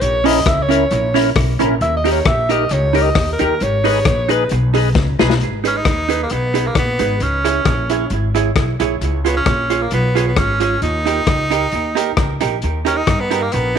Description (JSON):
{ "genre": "ska", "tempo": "133 BPM", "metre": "4/4", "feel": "swing 54% on 8ths", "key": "G# minor", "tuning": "A4 = 440 Hz", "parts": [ { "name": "bright alto saxophone", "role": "melody", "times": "0.0-4.5 s", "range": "A#4 to E5", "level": "-19 LUFS", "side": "equal", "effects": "none" }, { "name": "upright bass", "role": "bass", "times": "0.0-13.8 s", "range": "G#1 to G2", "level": "-20 LUFS", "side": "left 1 dB", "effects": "none" }, { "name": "crunchy breakbeat drum kit", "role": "drums", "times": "0.0-13.6 s", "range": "hi-hat, kick drum, rim click, snare drum", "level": "-19 LUFS", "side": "left 4 dB", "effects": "none" }, { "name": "vintage hollow-body jazz guitar", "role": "accompaniment", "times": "0.2-13.8 s", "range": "C#4 to C#5", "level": "-20 LUFS", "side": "right 11 dB", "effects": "tape echo" }, { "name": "percussive tonewheel organ", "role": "stabs", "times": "0.2-5.3 s", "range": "C#4 to B4", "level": "-22 LUFS", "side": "left 13 dB", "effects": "overdrive, slow rotary speaker" }, { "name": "edgy tenor saxophone", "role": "melody", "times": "5.7-13.8 s", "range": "A#3 to D#4", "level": "-19 LUFS", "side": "equal", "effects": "none" } ], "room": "light reverb, small room ambience", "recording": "1960s-style stereo with parts hard left and right", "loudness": "-14 LUFS", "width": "side -7 dB against mid", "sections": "0.0-5.4 A section; 5.4-13.8 B section", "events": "alto saxophone solo 0.0-5.4; drum fill 5.0-5.4", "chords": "0.0 A#dim; 1.8 D#; 3.6 G#m; 7.2 C#m; 9.0 C#; 10.8 D#" }